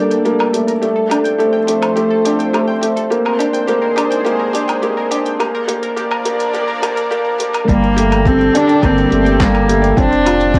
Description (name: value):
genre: piano and strings electronica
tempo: 105 BPM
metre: 4/4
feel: straight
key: G minor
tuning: A4 = 442 Hz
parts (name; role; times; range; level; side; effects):
- lush unison pad; sustained chords; 0.0-10.6 s; A2 to D5; -24 LUFS; equal; chorus, cassette tape, plate reverb
- analog pluck; arpeggios; 0.0-10.6 s; F4 to A5; -28 LUFS; equal; chorus, sidechain pumping, cassette tape, tape echo, plate reverb
- felt-muted upright piano; riff; 0.0-10.6 s; G3 to A4; -18 LUFS; equal; cassette tape, tape echo
- deep house drum kit; drums; 0.1-10.6 s; handclaps, hi-hat, woodblock; -26 LUFS; equal; none
- warm cello; melody; 7.7-10.6 s; Bb3 to D4; -16 LUFS; equal; cassette tape, plate reverb
- warm sub bass; bass; 7.7-10.6 s; F1 to G1; -21 LUFS; equal; sidechain pumping
- electronic kick drum; drums; 7.7-10.6 s; none; -19 LUFS; equal; none
room: wet studio reverb, RT60 0.5 s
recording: home recording on cassette, high-pass filter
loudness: -15 LUFS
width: mono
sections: 0.0-7.7 A section; 7.7-10.6 B section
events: build-up 0.0-7.7; filter sweep on analog synth pad 0.0-7.7; filter sweep 0.0-7.7; drop 7.7-10.6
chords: 0.0 Gmadd9; 0.8 F; 3.1 Ab; 5.4 Bb; 7.7 Gmadd9; 10.0 F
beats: 0.26 | 0.83 1.41 1.98 2.55 | 3.12 3.69 4.26 4.83 | 5.41 5.98 6.55 7.12 | 7.69 8.26 8.83 9.40 | 9.98 10.55